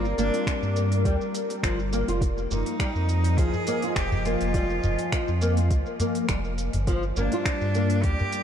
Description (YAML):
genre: organic downtempo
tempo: 103 BPM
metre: 4/4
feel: swing 53% on 16ths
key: F dorian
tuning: A4 = 440 Hz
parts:
  - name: bright cello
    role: melody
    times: 0.0-8.4 s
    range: Bb3 to Ab4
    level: -32 LUFS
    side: equal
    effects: diffuse ambient delay
  - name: warbly tape-like pad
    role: sustained chords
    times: 0.0-8.4 s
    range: F3 to Ab5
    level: -32 LUFS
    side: equal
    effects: chorus, built-in reverb, sidechain pumping
  - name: nylon-string guitar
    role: arpeggios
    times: 0.0-8.1 s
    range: F3 to F4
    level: -30 LUFS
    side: left 1 dB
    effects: ensemble chorus, diffuse ambient delay
  - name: warm sub bass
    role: bass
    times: 0.0-8.2 s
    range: F1 to G2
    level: -26 LUFS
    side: equal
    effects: sidechain pumping
  - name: organic electronic drum kit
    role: drums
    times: 0.1-8.4 s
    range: finger snaps, hi-hat, shaker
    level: -35 LUFS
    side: right 1 dB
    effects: none
  - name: electronic kick drum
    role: drums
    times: 0.5-8.2 s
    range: none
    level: -27 LUFS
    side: equal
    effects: none
  - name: udu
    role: percussion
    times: 2.5-8.3 s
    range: none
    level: -31 LUFS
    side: equal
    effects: none
room: moderate cathedral reverb, RT60 5.8 s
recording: dreamy mix soaked in reverb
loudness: -22 LUFS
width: side -9 dB against mid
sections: 0.0-8.4 A section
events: none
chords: 0.0 Gm7; 2.2 Fm7; 6.9 Gm7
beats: 0.47 1.05 1.63 | 2.22 2.80 3.38 3.96 | 4.55 5.13 5.71 6.29 | 6.88 7.46 8.04